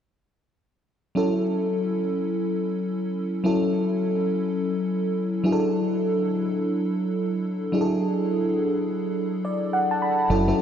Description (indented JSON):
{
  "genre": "R&B",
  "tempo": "105 BPM",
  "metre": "4/4",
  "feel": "swing 62% on 16ths",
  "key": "F# minor",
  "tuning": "A4 = 442 Hz",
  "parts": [
    { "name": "FM electric piano with soft pad layer", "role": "accompaniment", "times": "1.1-10.6 s", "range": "F#3 to B5", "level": "-22 LUFS", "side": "equal", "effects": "chorus" },
    { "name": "deep dub fingered electric bass", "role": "bass", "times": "10.3-10.5 s", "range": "F#1", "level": "-23 LUFS", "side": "equal", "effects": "none" }
  ],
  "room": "wet plate reverb, RT60 3.4 s",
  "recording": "bright 1980s-style digital production",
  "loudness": "-22 LUFS",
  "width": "side -8 dB against mid",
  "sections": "1.2-10.3 A section",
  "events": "FM electric piano fill 9.2-10.3",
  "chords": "1.2 F#m7; 5.4 E9sus4",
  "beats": "| 1.16 1.73 2.30 2.87 | 3.44 4.01 4.58 5.16 | 5.73 6.30 6.87 7.44 | 8.01 8.58 9.15 9.73 | 10.30"
}